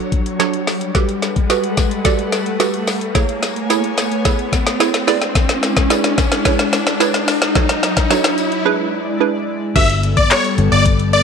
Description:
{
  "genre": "dance-pop",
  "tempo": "109 BPM",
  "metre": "4/4",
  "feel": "straight",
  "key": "unclear",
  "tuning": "A4 = 440 Hz",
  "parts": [
    { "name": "hollow square pluck", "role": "accompaniment", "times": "0.0-10.6 s", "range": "F#3 to D5", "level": "-21 LUFS", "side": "right 12 dB", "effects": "chorus, sidechain pumping" },
    { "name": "airy breathy pad", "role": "sustained chords", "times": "0.0-11.2 s", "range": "F#3 to G#5", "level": "-22 LUFS", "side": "left 2 dB", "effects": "chorus, sidechain pumping" },
    { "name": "riser", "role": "sound effects", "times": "0.0-8.7 s", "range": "none", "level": "-22 LUFS", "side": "left 1 dB", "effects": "none" },
    { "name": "smooth R&B drum kit", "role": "drums", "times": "0.1-11.2 s", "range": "crash cymbal, handclaps, hi-hat, kick drum, snare drum", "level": "-17 LUFS", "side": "left 2 dB", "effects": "none" },
    { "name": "tambourine", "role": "percussion", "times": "1.2-8.5 s", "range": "none", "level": "-31 LUFS", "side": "left 17 dB", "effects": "none" },
    { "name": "supersaw chords", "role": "melody", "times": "9.8-11.2 s", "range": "C#5 to E5", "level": "-15 LUFS", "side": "left 1 dB", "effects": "slapback echo" },
    { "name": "vintage muted fingered electric bass", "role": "bass", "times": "9.8-11.2 s", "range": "G1", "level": "-16 LUFS", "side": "left 2 dB", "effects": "sidechain pumping" }
  ],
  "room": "light reverb",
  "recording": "1960s-style stereo with parts hard left and right",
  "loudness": "-14 LUFS",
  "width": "side -6 dB against mid",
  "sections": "0.0-9.8 A section; 9.8-11.2 B section",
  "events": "build-up 0.0-9.8; drum fill 0.0-8.7; riser 0.0-9.8; break 8.7-9.8; drop 9.8-11.2",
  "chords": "0.0 Dmaj7/F#; 0.9 Gmaj9; 3.2 Amaj7; 5.1 E7; 7.6 Dmaj7/F#; 8.7 E7; 9.8 Gmaj9"
}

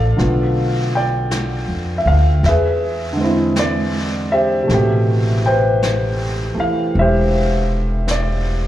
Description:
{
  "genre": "jazz ballad",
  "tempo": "53 BPM",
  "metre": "4/4",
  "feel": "swing 66% on 8ths",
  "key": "A minor",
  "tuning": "A4 = 444 Hz",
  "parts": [
    { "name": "warm concert grand piano", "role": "accompaniment", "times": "0.0-8.7 s", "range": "B2 to G5", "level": "-18 LUFS", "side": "equal", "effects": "slapback echo" },
    { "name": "upright bass", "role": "bass", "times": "0.0-8.7 s", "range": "E1 to F2", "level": "-18 LUFS", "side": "equal", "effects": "none" },
    { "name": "jazz brush drum kit", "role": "drums", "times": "0.2-8.7 s", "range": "brushed snare drum, hi-hat, snare drum", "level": "-28 LUFS", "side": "equal", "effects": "slapback echo" }
  ],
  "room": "light reverb, studio ambience",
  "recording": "live gig heard through the venue's PA, club reverb",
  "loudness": "-15 LUFS",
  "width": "side -13 dB against mid",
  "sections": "0.0-8.7 A section",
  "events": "none",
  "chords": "0.2 Bm7b5; 2.4 E7b13; 4.7 Am9"
}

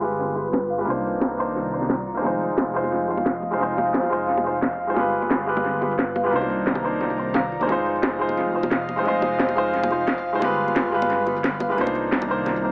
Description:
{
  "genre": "liquid drum and bass",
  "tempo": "176 BPM",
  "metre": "4/4",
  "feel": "swing 53% on 16ths",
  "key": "F dorian",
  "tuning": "A4 = 440 Hz",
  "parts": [
    { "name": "warm grand piano", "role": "accompaniment", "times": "0.0-12.7 s", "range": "Ab3 to C5", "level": "-23 LUFS", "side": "equal", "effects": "tape echo" },
    { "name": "airy breathy pad", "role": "sustained chords", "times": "0.2-12.7 s", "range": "Eb3 to Bb5", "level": "-28 LUFS", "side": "equal", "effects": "chorus" },
    { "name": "swelling detuned saw bass", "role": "bass", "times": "0.0-12.7 s", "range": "F1 to C2", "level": "-34 LUFS", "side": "equal", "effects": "none" },
    { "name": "kalimba", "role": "arpeggios", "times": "0.2-12.6 s", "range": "F4 to F5", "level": "-30 LUFS", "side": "equal", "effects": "low-pass filter, dub echo" },
    { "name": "electronic snare drum", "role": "drums", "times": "0.5-12.2 s", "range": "none", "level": "-26 LUFS", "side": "equal", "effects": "low-pass filter on snare, low-pass filter on room, dub echo" },
    { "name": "bongos", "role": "percussion", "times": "2.2-12.5 s", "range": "none", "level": "-32 LUFS", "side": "equal", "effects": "dub echo" }
  ],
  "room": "moderate plate reverb, RT60 1.3 s, studio reverb",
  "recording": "echo-heavy mix, low-pass filter, small speaker sound",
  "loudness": "-20 LUFS",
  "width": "side -30 dB against mid",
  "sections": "0.0-12.7 A section",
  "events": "filter sweep on analog synth pad 0.0-12.7; filter sweep on kalimba 0.0-12.7; filter sweep 0.0-12.7",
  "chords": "0.0 G7b9; 0.9 Cm9; 2.2 Fm7; 5.0 G7b9; 6.3 Cm9; 7.7 Fm7; 10.4 G7b9; 11.8 Cm9"
}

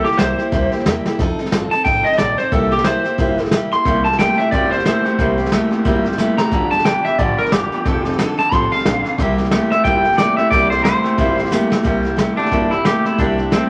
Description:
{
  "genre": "rockabilly",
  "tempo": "180 BPM",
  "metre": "4/4",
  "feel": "swing 59% on 8ths",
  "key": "C mixolydian",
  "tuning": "A4 = 440 Hz",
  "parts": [
    { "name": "electric guitar through a small old amp", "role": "melody", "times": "0.0-13.7 s", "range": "C4 to C6", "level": "-20 LUFS", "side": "equal", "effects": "spring reverb" },
    { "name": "picked steel-string acoustic guitar", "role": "accompaniment", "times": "0.0-13.7 s", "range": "G2 to A4", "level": "-23 LUFS", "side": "equal", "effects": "none" },
    { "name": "vintage brush drum kit", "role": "drums", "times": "0.0-13.6 s", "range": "hi-hat, kick drum, snare drum", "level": "-23 LUFS", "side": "equal", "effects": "none" },
    { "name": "upright bass", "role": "bass", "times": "0.1-13.6 s", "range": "F1 to F2", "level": "-29 LUFS", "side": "equal", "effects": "none" },
    { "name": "electric guitar through a small old amp", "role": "riff", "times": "3.9-13.7 s", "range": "F2 to A3", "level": "-24 LUFS", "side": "equal", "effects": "spring reverb" }
  ],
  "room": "moderate club reverb, RT60 0.5 s",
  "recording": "vinyl crackle",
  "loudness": "-17 LUFS",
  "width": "mono",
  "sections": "0.0-11.8 A section; 11.8-13.7 B section",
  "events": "clean electric guitar solo 0.0-11.8; drum fill 1.0, 6.2-6.5, 11.5-11.8",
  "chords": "0.0 C7; 1.2 F7; 2.5 C7; 6.5 G7; 7.9 F7; 9.2 C7"
}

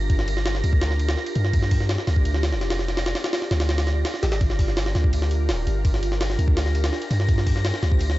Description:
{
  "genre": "drum and bass, jungle",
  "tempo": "167 BPM",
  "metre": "4/4",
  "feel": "straight",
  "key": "G minor",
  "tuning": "A4 = 440 Hz",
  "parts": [
    { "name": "ethereal airy pad", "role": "sustained chords", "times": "0.0-8.2 s", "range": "D4 to D5", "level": "-31 LUFS", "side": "right 1 dB", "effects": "ensemble chorus, built-in reverb" },
    { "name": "long sustained 808-style bass", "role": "bass", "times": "0.0-8.2 s", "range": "D1 to G2", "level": "-22 LUFS", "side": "equal", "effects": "tube saturation" },
    { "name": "wind-like tuned noise texture", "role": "texture", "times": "0.0-8.2 s", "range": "Bb6", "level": "-34 LUFS", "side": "right 2 dB", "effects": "built-in reverb" },
    { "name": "jungle sampler-style drum kit", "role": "drums", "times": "0.1-8.2 s", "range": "hi-hat, kick drum, ride cymbal, snare drum", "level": "-24 LUFS", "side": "equal", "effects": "none" },
    { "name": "crunchy breakbeat drum kit", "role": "drums", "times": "4.4-8.1 s", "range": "hi-hat, snare drum", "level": "-42 LUFS", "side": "left 3 dB", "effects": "none" }
  ],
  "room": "little or no reverb",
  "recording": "dry, gritty hardware recording, cassette tape, nothing above 7.8 kHz",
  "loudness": "-20 LUFS",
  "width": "side -17 dB against mid",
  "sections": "0.0-8.2 A section",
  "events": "none",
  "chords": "0.0 Gm7"
}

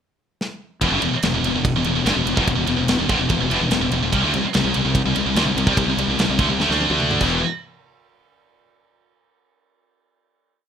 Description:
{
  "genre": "heavy metal",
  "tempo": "146 BPM",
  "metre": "4/4",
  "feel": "straight",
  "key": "E minor",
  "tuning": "A4 = 445 Hz",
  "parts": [
    { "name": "tight metal drum kit", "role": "drums", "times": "0.4-7.3 s", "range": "crash cymbal, kick drum, ride cymbal, snare drum, toms", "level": "-24 LUFS", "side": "equal", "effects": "none" },
    { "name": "heavy high-gain guitar", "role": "riff", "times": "0.8-7.4 s", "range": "E2 to D4", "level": "-22 LUFS", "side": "right 11 dB", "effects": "distortion" },
    { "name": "heavy high-gain guitar", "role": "riff", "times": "0.8-7.4 s", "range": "E2 to G4", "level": "-29 LUFS", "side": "right 1 dB", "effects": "none" },
    { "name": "scooped high-gain guitar", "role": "riff", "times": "0.8-7.4 s", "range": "E2 to D4", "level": "-22 LUFS", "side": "left 8 dB", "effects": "distortion" },
    { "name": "fuzz fingered electric bass", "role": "bass", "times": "0.8-7.4 s", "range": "E1 to D2", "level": "-25 LUFS", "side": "right 1 dB", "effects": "overdrive" }
  ],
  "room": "moderate studio reverb, RT60 0.6 s",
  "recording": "rough home demo mix",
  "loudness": "-17 LUFS",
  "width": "side -8 dB against mid",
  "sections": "0.0-0.8 pickup bar; 0.8-7.4 riff; 7.4-9.1 final hit",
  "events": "drum fill 0.4-0.8, 6.6-7.4",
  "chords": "0.0 N.C.; 0.8 Em; 4.1 C5; 7.2 Em; 7.4 N.C."
}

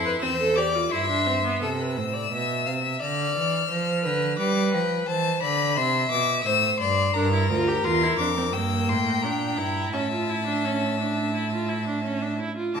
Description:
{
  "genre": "classical, baroque-style fugue for string quartet",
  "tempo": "86 BPM",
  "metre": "4/4",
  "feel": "straight",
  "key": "unclear",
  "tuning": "A4 = 437 Hz",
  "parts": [
    { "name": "clear violin", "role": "melody", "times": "0.0-12.8 s", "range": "G5 to F6", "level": "-27 LUFS", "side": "left 9 dB", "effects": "none" },
    { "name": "rich violin", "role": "second line", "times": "0.0-12.8 s", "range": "A4 to A5", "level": "-28 LUFS", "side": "left 3 dB", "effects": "none" },
    { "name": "bright viola", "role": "accompaniment", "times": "0.0-1.6, 7.2-12.7 s", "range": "Bb3 to A4", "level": "-27 LUFS", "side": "right 3 dB", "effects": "none" },
    { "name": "rich cello", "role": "bass", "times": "0.0-12.8 s", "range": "D2 to G3", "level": "-28 LUFS", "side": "right 4 dB", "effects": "none" }
  ],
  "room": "wet recital hall reverb, RT60 1.6 s",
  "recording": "minimal, uncompressed stereo recording",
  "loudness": "-22 LUFS",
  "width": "side -6 dB against mid",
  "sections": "0.0-1.6 A section; 1.6-12.7 B section",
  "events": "none",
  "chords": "0.0 C/E; 1.6 Am; 3.0 Dm; 4.4 G; 5.8 C; 7.2 Gm; 8.5 Edim/G; 9.9 A"
}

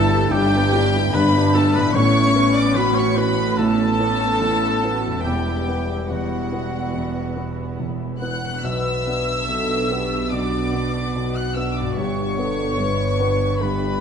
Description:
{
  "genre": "cinematic, emotional film score for orchestra",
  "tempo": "72 BPM",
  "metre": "4/4",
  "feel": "rubato",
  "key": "unclear",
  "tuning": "A4 = 443 Hz",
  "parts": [
    { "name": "warm symphonic violin section", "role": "melody", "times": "0.0-14.0 s", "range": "F#5 to F#6", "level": "-26 LUFS", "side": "left 2 dB", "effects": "none" },
    { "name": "silver concert flute", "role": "second line", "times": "0.0-14.0 s", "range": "F#5 to F#6", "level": "-30 LUFS", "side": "left 2 dB", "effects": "none" },
    { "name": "warm oboe", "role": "second line", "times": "0.0-14.0 s", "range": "F#4 to F#5", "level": "-30 LUFS", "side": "right 1 dB", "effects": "none" },
    { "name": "warm symphonic violin section", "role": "second line", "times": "0.0-14.0 s", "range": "F#4 to F#5", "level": "-30 LUFS", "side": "left 5 dB", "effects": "none" },
    { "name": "dark symphonic viola section", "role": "accompaniment", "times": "0.0-14.0 s", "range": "G3 to G4", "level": "-28 LUFS", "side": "right 3 dB", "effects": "none" },
    { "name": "felt-muted upright piano", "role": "accompaniment", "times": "0.0-14.0 s", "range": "E1 to B4", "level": "-26 LUFS", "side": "left 1 dB", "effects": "none" },
    { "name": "dark French horn section", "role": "sustained chords", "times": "0.0-14.0 s", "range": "G3 to B4", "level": "-24 LUFS", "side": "left 3 dB", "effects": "none" },
    { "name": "concert harp", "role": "arpeggios", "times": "0.0-14.0 s", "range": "E2 to D5", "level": "-32 LUFS", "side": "left 6 dB", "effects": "none" },
    { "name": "rich studio cello section", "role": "bass", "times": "0.0-14.0 s", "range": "E2 to B2", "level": "-26 LUFS", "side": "right 4 dB", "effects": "none" },
    { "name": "warm symphonic double bass section", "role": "bass", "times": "0.0-14.0 s", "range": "E1 to B1", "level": "-27 LUFS", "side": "right 4 dB", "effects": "none" }
  ],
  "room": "wet scoring stage reverb, RT60 2.1 s",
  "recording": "nothing above 10.8 kHz",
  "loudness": "-18 LUFS",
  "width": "side -7 dB against mid",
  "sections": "0.0-14.0 A section",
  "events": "none",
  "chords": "0.0 G; 1.9 Aadd9; 5.2 Emadd9; 8.6 Bm; 12.0 G"
}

